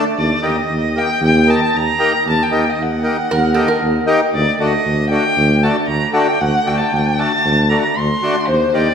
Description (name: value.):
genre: klezmer.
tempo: 116 BPM.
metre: 4/4.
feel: straight.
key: D phrygian dominant.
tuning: A4 = 443 Hz.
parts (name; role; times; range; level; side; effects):
accordion; accompaniment; 0.0-8.9 s; A3 to Bb4; -19 LUFS; left 2 dB; none.
dark violin; melody; 0.2-8.9 s; C5 to C6; -18 LUFS; equal; none.
mellow tuba; bass; 0.2-8.9 s; D2 to Eb2; -18 LUFS; equal; none.
metal-body resonator slide guitar; second line; 3.3-4.2 s; A4 to Bb4; -22 LUFS; right 2 dB; none.
room: wet concert hall reverb, RT60 2.2 s.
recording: recorded in a church or concert hall.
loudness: -13 LUFS.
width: side -7 dB against mid.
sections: 0.0-8.9 A section.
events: none.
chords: 0.2 Eb; 4.3 D.